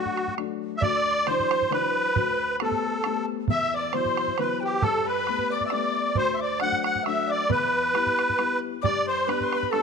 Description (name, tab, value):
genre	celtic folk, Celtic waltz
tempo	135 BPM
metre	3/4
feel	swing 54% on 8ths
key	D mixolydian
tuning	A4 = 441 Hz
part	musette accordion	melody	0.0-9.8 s	F#4 to F#5	-25 LUFS	right 1 dB	none
part	breathy mellow mid whistle	second line	0.0-9.8 s	F#5 to F#6	-32 LUFS	left 10 dB	none
part	dark upright piano	accompaniment	0.0-9.8 s	D2 to E4	-31 LUFS	left 13 dB	none
part	bodhran	percussion	0.1-9.8 s	none	-30 LUFS	right 7 dB	none
part	kalimba	second line	0.8-9.8 s	G4 to F#5	-32 LUFS	right 11 dB	none
room	moderate echo chamber reverb, RT60 1.7 s, small room reverb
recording	1960s-style stereo with parts hard left and right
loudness	-22 LUFS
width	side -6 dB against mid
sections	0.8-9.8 A section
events	none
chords	0.0 D; 0.8 Dadd9; 2.2 Gadd9/D; 3.5 Esus2; 4.8 Gadd9; 6.2 D; 7.5 Em; 8.8 G